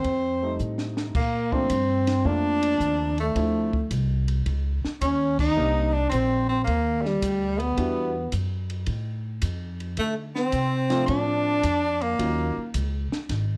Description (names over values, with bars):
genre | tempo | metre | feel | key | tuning
jazz, small-group swing and bop | 109 BPM | 4/4 | swing 68% on 8ths | Bb major | A4 = 441 Hz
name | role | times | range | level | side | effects
mellow trombone | melody | 0.0-12.7 s | G3 to Eb4 | -28 LUFS | equal | none
clear tenor saxophone | second line | 0.0-12.7 s | G3 to C5 | -32 LUFS | equal | none
upright bass | bass | 0.0-13.6 s | Ab1 to D3 | -30 LUFS | equal | none
compact cocktail drum kit | drums | 0.0-13.5 s | crash cymbal, hi-hat, kick drum, ride cymbal, snare drum | -35 LUFS | equal | none
warm concert grand piano | accompaniment | 0.4-12.5 s | F3 to F#4 | -32 LUFS | equal | none
room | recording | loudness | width
light reverb | dark, warm production | -25 LUFS | mono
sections
0.0-1.2 A section; 1.2-13.6 B section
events
drum fill 0.6-1.2; band accent 5.3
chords
0.1 F7; 1.2 Bbmaj7; 3.4 Dm9; 4.5 Dbsus2; 5.6 Cm7; 7.8 Em9; 8.9 F; 10.0 Dm7; 12.2 Ebm7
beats
0.05 0.60 | 1.15 1.71 2.26 2.81 | 3.36 3.91 4.46 5.01 | 5.57 6.12 6.67 7.22 | 7.77 8.33 8.88 9.43 | 9.98 10.54 11.09 11.64 | 12.19 12.74 13.30